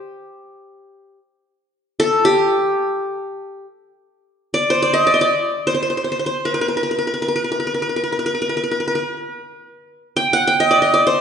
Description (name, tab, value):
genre	Arabic maqam ensemble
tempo	free time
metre	none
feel	none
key	G maqam suznak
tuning	A4 = 441 Hz
part	qanun	solo	0.0-11.2 s	G4 to G5	-16 LUFS	equal	none
room	wet recital hall reverb, RT60 1.5 s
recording	recorded in a church or concert hall, nothing above 10.6 kHz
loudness	-16 LUFS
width	side -7 dB against mid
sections	0.0-3.9 A section; 3.9-11.2 A section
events	none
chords	none